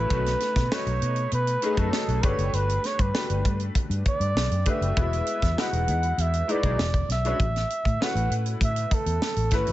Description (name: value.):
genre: polished 1980s jazz-funk pop.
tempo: 99 BPM.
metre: 4/4.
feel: straight.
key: unclear.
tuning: A4 = 441 Hz.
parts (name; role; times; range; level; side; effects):
warm flugelhorn; melody; 0.0-9.7 s; A4 to F#5; -28 LUFS; right 2 dB; none.
bright concert grand piano; accompaniment; 0.0-9.7 s; G#3 to C#5; -31 LUFS; left 3 dB; ensemble chorus.
vintage muted fingered electric bass; bass; 0.0-9.7 s; E1 to B2; -26 LUFS; equal; none.
tight funk drum kit; drums; 0.1-9.7 s; hi-hat, kick drum, snare drum; -27 LUFS; equal; none.
room: light reverb, small room ambience.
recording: nothing above 8.0 kHz.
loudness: -22 LUFS.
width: side -15 dB against mid.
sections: 0.0-9.7 A section.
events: none.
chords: 0.1 B7; 2.2 Gmaj7; 5.0 Emaj7; 6.8 E13; 7.4 A69.